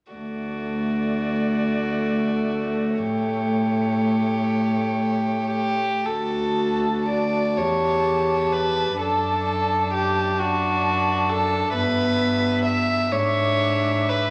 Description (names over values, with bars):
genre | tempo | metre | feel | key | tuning
classical, slow romantic movement for string quartet | 34-45 BPM (dotted quarters) | 6/8 | rubato | D major | A4 = 440 Hz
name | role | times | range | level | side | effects
dark violin | melody | 0.1-14.3 s | C#5 to A5 | -31 LUFS | equal | none
rich violin | second line | 0.1-14.3 s | F#4 to E5 | -27 LUFS | equal | none
dark viola | accompaniment | 0.1-14.3 s | A3 to G4 | -29 LUFS | equal | none
warm cello | bass | 0.1-14.3 s | D2 to A2 | -28 LUFS | equal | none
room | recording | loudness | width
wet recital hall reverb, RT60 1.6 s | none | -22 LUFS | mono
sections
0.1-6.1 A section; 6.1-14.3 B section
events
none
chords
0.1 D; 3.0 A7; 6.1 D; 7.6 A7/E; 9.0 D/F#; 11.7 Em/G; 13.1 E7/G#